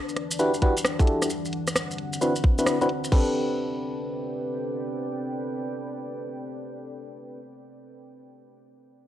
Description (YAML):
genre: UK garage, two-step garage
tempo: 132 BPM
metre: 4/4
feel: swing 65% on 16ths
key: A dorian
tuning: A4 = 439 Hz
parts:
  - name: deep dark ambient pad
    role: texture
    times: 0.0-7.5 s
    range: D3 to A5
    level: -34 LUFS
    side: equal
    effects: chorus, built-in reverb, sidechain pumping
  - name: maracas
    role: percussion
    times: 0.1-3.1 s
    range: none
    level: -33 LUFS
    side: equal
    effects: none
  - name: garage drum kit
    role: drums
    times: 0.2-3.2 s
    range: crash cymbal, hi-hat, rim click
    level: -29 LUFS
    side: equal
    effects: low-pass filter on hats, low-pass filter on snare, low-pass filter on cymbals
  - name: FM electric piano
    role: stabs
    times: 0.4-7.4 s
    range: C4 to B4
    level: -27 LUFS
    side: left 1 dB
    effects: chorus, low-pass filter, analog delay
  - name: electronic kick drum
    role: drums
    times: 0.6-3.2 s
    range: none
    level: -20 LUFS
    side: equal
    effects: none
room: light reverb, digital ambience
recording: dry, gritty hardware recording, cassette tape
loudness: -24 LUFS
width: side -12 dB against mid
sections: 0.0-3.1 A section; 3.1-6.8 B section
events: filter sweep on drum 0.0-3.1; filter sweep on FM electric piano 0.0-3.1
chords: 0.0 Em9; 1.3 D13; 3.1 Am11